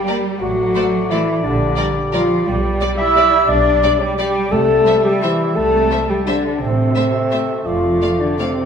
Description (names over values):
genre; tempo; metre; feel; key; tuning
classical; 174 BPM; 3/4; uneven beats, rubato; C major; A4 = 440 Hz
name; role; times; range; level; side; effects
mellow clarinet; second line; 0.0-8.7 s; C4 to E5; -24 LUFS; equal; none
mellow cor anglais; second line; 0.0-8.7 s; D5 to E5; -26 LUFS; right 2 dB; none
mellow hollow silver concert flute; second line; 0.0-8.7 s; C5 to E6; -24 LUFS; right 1 dB; none
mellow bassoon; accompaniment; 0.0-8.7 s; G3 to Bb3; -25 LUFS; right 1 dB; none
dark French horn section; sustained chords; 0.0-8.7 s; C4 to E5; -19 LUFS; left 3 dB; none
warm chamber cello section; bass; 0.0-8.7 s; C3 to E4; -22 LUFS; right 2 dB; none
rich symphonic violin section; melody; 0.1-8.5 s; D5 to F5; -29 LUFS; left 2 dB; none
rich chamber violin section; second line; 0.1-8.5 s; Bb4 to D5; -29 LUFS; left 2 dB; none
rich chamber viola section; accompaniment; 0.1-8.5 s; G3 to Bb3; -30 LUFS; right 1 dB; none
rich chamber double bass section; bass; 0.4-8.0 s; F1 to C2; -23 LUFS; right 2 dB; none
room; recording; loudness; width
wet recital hall reverb, RT60 1.6 s; minimal, uncompressed stereo recording; -14 LUFS; side -7 dB against mid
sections
0.0-8.7 A section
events
none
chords
0.4 D/A; 1.4 Gm/Bb; 2.5 G/B; 4.5 C; 6.6 Am; 7.7 Dm/F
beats
0.08 | 0.41 0.76 1.11 | 1.45 1.78 2.14 | 2.47 2.81 3.16 | 3.49 3.83 4.19 | 4.52 4.86 5.22 | 5.56 5.91 6.28 | 6.62 6.96 7.32 | 7.66 8.01 8.39